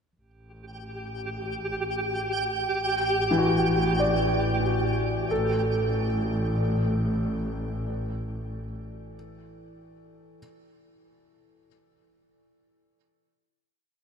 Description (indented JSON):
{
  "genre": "ambient",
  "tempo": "70 BPM",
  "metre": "3/4",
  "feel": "straight",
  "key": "unclear",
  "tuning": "A4 = 440 Hz",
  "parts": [
    { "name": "clear studio double bass section", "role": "bass", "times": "0.2-8.6 s", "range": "A1", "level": "-29 LUFS", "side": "equal", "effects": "none" },
    { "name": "twinkling granular texture", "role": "texture", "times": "1.0-5.3 s", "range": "G4", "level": "-28 LUFS", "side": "right 1 dB", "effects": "built-in reverb" },
    { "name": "felt-muted upright piano", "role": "arpeggios", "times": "3.3-10.4 s", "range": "E3 to D5", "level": "-28 LUFS", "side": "left 1 dB", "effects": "ping-pong delay" }
  ],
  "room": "wet huge ambient reverb, RT60 7.4 s",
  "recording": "none",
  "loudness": "-24 LUFS",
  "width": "side -6 dB against mid",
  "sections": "0.2-5.3 A section; 5.3-7.9 final note",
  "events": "fade-in on double bass section 0.2-5.3",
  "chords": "0.2 Gsus2/A; 2.7 Em11/A"
}